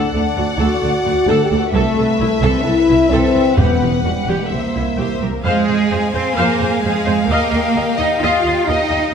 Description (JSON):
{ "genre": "cinematic, heroic adventure film score", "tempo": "130 BPM", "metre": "4/4", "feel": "straight", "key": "A dorian, F minor from 5.4 s", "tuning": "A4 = 440 Hz", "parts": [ { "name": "warm symphonic violin section", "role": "melody", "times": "0.0-9.1 s", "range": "Ab4 to F#5", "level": "-24 LUFS", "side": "left 4 dB", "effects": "none" }, { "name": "bright symphonic violin section", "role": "second line", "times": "0.0-9.1 s", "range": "Bb4 to Ab5", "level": "-26 LUFS", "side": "left 3 dB", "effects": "none" }, { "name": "rich studio viola section", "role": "accompaniment", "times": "0.0-9.0 s", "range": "E4 to F5", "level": "-23 LUFS", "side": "equal", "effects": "none" }, { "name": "mellow French horn section", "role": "sustained chords", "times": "0.0-9.1 s", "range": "G3 to F5", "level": "-18 LUFS", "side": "left 3 dB", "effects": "none" }, { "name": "clear symphonic double bass section", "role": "bass", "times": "0.1-9.0 s", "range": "E1 to F2", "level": "-22 LUFS", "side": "right 4 dB", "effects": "none" }, { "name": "rich symphonic cello section", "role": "bass", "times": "0.2-9.1 s", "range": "C2 to F4", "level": "-20 LUFS", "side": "right 3 dB", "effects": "none" }, { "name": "timpani", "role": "percussion", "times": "3.6-4.2 s", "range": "E2", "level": "-22 LUFS", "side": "left 1 dB", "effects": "none" } ], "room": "wet concert hall reverb, RT60 2.2 s", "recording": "none", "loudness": "-14 LUFS", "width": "side -7 dB against mid", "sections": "0.0-5.4 A section; 5.4-9.1 B section", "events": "none", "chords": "0.0 D; 1.7 Amadd9/C; 3.6 Emadd9; 4.5 C7; 5.4 Fm; 7.3 Ebadd9" }